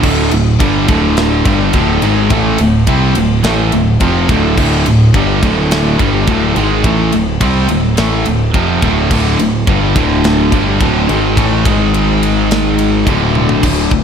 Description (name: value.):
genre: heavy metal.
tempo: 106 BPM.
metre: 4/4.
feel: straight.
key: D minor.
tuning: A4 = 441 Hz.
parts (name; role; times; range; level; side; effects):
distorted electric guitar; riff; 0.0-14.0 s; D2 to C4; -17 LUFS; left 8 dB; distortion.
high-gain distorted guitar; riff; 0.0-13.6 s; D2 to C4; -16 LUFS; right 9 dB; distortion.
overdriven semi-hollow guitar; riff; 0.0-14.0 s; D2 to C4; -16 LUFS; equal; slapback echo.
growling picked electric bass; bass; 0.0-14.0 s; D1 to C2; -17 LUFS; equal; overdrive.
tight metal drum kit; drums; 0.0-14.0 s; crash cymbal, kick drum, ride cymbal, snare drum, toms; -17 LUFS; equal; none.
room: moderate lush hall reverb, RT60 2.4 s.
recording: big arena sound.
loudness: -10 LUFS.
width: side -7 dB against mid.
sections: 0.0-13.6 A section.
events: half time 0.0-13.6; drum fill 13.4.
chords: 0.0 Dm; 11.7 G#5; 13.1 D5.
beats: | 0.04 0.61 1.18 1.74 | 2.31 2.88 3.44 4.01 | 4.58 5.14 5.71 6.28 | 6.84 7.41 7.98 8.54 | 9.11 9.67 10.24 10.81 | 11.37 11.94 12.51 13.07 | 13.64.